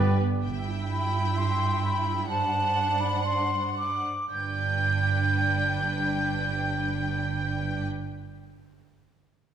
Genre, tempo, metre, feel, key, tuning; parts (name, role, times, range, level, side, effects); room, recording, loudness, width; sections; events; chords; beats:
classical, dramatic, fast romantic movement for symphony orchestra; 108-131 BPM; 4/4; rubato; G major; A4 = 440 Hz
warm symphonic violin section; melody; 0.0-7.9 s; B4 to G5; -36 LUFS; left 2 dB
silver concert flute; second line; 0.0-7.9 s; G5 to G6; -28 LUFS; equal
warm symphonic violin section; second line; 0.0-7.8 s; B4 to E5; -43 LUFS; left 2 dB
rich symphonic viola section; accompaniment; 0.0-7.8 s; G3 to E4; -34 LUFS; left 1 dB
rich symphonic cello section; bass; 0.0-7.8 s; G2; -30 LUFS; right 5 dB
warm studio double bass section; bass; 0.0-0.9, 4.3-7.8 s; G1; -31 LUFS; right 4 dB
wet concert hall reverb, RT60 1.8 s; -24 LUFS; side -9 dB against mid
0.4-4.3 A section; 4.3-8.4 B section
slowing down 0.0-4.3
0.4 C/G; 2.3 D7/G
| 0.44 0.90 1.36 1.83 | 2.29 2.76 3.25 3.76 | 4.30 4.81 5.32 5.84 | 6.35 6.86 7.38